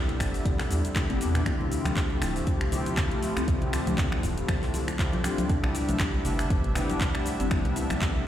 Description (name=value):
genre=afro house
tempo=119 BPM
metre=4/4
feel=swing 56% on 16ths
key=D dorian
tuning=A4 = 437 Hz
part: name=warm analog pad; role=sustained chords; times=0.0-8.3 s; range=C3 to E5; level=-35 LUFS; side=equal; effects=chorus, tremolo, sidechain pumping
part: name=buzzing kalimba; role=arpeggios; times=0.0-8.1 s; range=A3 to D5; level=-34 LUFS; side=left 2 dB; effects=sidechain pumping, ping-pong delay
part: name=mellow synth brass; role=stabs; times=0.0-8.3 s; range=B3 to G4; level=-33 LUFS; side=left 3 dB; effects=chorus, sidechain pumping, ping-pong delay
part: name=round analog bass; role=bass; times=0.0-8.2 s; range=D1 to E2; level=-31 LUFS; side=equal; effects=sidechain pumping
part: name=afro-pop drum kit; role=drums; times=0.1-8.1 s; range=finger snaps, handclaps, hi-hat, shaker, toms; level=-33 LUFS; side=equal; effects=none
part: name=electronic kick drum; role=drums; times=0.2-8.1 s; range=none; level=-27 LUFS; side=equal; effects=none
part: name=congas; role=percussion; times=1.6-8.2 s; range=none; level=-35 LUFS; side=left 1 dB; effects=none
room=light reverb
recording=played on a big sound system in a bare room, large studio reverb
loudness=-24 LUFS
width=side -11 dB against mid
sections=0.0-8.3 A section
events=drum fill 1.0-1.5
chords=0.0 Cmaj9; 1.5 Dm11; 5.5 Cmaj9